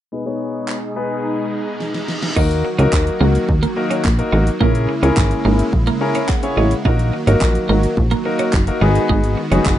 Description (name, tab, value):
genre	dance-pop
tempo	107 BPM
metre	4/4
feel	straight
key	G# minor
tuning	A4 = 440 Hz
part	clear concert grand piano	accompaniment	0.1-9.8 s	A#3 to A#5	-21 LUFS	left 3 dB	sidechain pumping, low-pass filter
part	supersaw chords	sustained chords	0.1-9.8 s	B2 to G#4	-23 LUFS	right 1 dB	sidechain pumping, low-pass filter
part	pop drum kit	drums	0.7-9.8 s	crash cymbal, handclaps, hi-hat, kick drum, snare drum	-19 LUFS	equal	none
part	reverse cymbal	sound effects	1.5-2.4 s	none	-28 LUFS	equal	none
part	twelve-string electric guitar	riff	2.4-9.6 s	G#3 to D#4	-23 LUFS	right 6 dB	wide subtle chorus
part	plucky analog bass	bass	2.4-9.8 s	F#1 to D#2	-16 LUFS	equal	sidechain pumping
room	light reverb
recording	rough home demo mix, nothing above 10.7 kHz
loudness	-15 LUFS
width	side -12 dB against mid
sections	0.1-2.4 A section; 2.4-9.8 B section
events	filter sweep 0.1-2.4; reverse cymbal 1.5-2.4; drum fill 1.8-2.4; grand piano fill 5.7-6.9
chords	0.1 G#m; 2.4 D#m; 4.6 A#m7b5; 6.9 D#m; 8.8 G#m7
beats	| 0.12 0.68 1.24 1.80 | 2.37 2.93 3.49 4.05 | 4.61 5.17 5.73 6.29 | 6.85 7.41 7.97 8.53 | 9.09 9.65